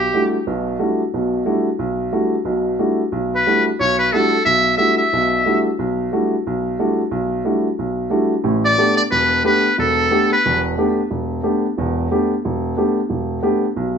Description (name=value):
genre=jazz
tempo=180 BPM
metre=4/4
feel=swing 62% on 8ths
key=E minor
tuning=A4 = 440 Hz
part: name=trumpet with metal mute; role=melody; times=0.0-0.3, 3.4-5.6, 8.7-10.6 s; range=G4 to E5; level=-16 LUFS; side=equal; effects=plate reverb
part: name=clear baby grand piano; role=accompaniment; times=0.0-14.0 s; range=E1 to G4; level=-18 LUFS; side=equal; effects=none
room=moderate large studio reverb, RT60 0.9 s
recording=nothing above 8.0 kHz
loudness=-16 LUFS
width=side -7 dB against mid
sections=0.0-8.4 A section; 8.4-14.0 B section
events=none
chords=0.0 Em11; 8.4 A9sus4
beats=0.12 | 0.46 0.79 1.12 1.45 | 1.79 2.12 2.45 2.79 | 3.12 3.45 3.78 4.12 | 4.45 4.78 5.12 5.45 | 5.78 6.11 6.45 6.78 | 7.11 7.45 7.78 8.11 | 8.44 8.78 9.11 9.44 | 9.77 10.10 10.44 10.77 | 11.10 11.43 11.76 12.10 | 12.43 12.76 13.09 13.43 | 13.76